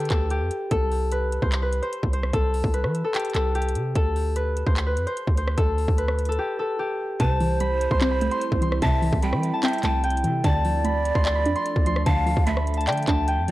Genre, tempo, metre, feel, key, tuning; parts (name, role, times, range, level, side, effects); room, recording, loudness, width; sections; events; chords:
hip hop, trap; 148 BPM; 4/4; half-time; C major; A4 = 440 Hz
concert harp; melody; 0.0-13.5 s; G4 to C6; -26 LUFS; left 2 dB; low-pass filter, tape echo
warm 808-style bass; bass; 0.0-13.5 s; C2 to E3; -25 LUFS; equal
trap drum kit; drums; 0.0-13.5 s; handclaps, hi-hat, kick drum, rim click; -26 LUFS; equal
breathy mellow large pan pipes; second line; 7.2-13.5 s; C5 to G5; -29 LUFS; right 3 dB; tape echo
soft round pluck; accompaniment; 7.2-13.5 s; C3 to D5; -27 LUFS; equal; chorus
warbly tape-like pad; sustained chords; 7.7-13.5 s; F3 to A4; -33 LUFS; right 2 dB; chorus, built-in reverb
digital ambience; dry, gritty hardware recording; -21 LUFS; side -16 dB against mid
0.0-7.2 A section; 7.2-13.5 B section
break 6.4-7.2
0.0 Dm; 0.7 C5; 4.0 D5; 7.2 C6; 10.4 Dm